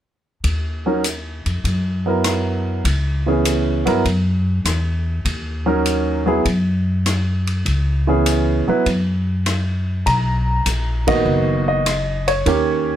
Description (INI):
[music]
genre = jazz piano trio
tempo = 100 BPM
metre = 4/4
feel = swing 69% on 8ths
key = B major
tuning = A4 = 440 Hz
[part]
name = upright bass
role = bass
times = 0.4-13.0 s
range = F#1 to G2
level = -20 LUFS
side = left 1 dB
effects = none
[part]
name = swinging big-band drum kit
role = drums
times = 0.4-12.7 s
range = hi-hat, kick drum, ride cymbal, rim click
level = -26 LUFS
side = left 1 dB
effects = none
[part]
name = warm concert grand piano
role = melody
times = 0.9-13.0 s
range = D#3 to A#5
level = -18 LUFS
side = right 2 dB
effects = none
[sound]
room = light reverb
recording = none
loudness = -17 LUFS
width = side -11 dB against mid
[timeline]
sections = 0.4-10.1 A section; 10.1-13.0 B section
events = band accent 11.0-11.3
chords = 0.4 N.C.; 1.6 F#7sus4; 2.8 C#m7; 4.0 Esus2; 5.2 D#m7; 6.5 N.C.; 7.7 C#m7; 8.9 N.C.; 10.1 Bmaj7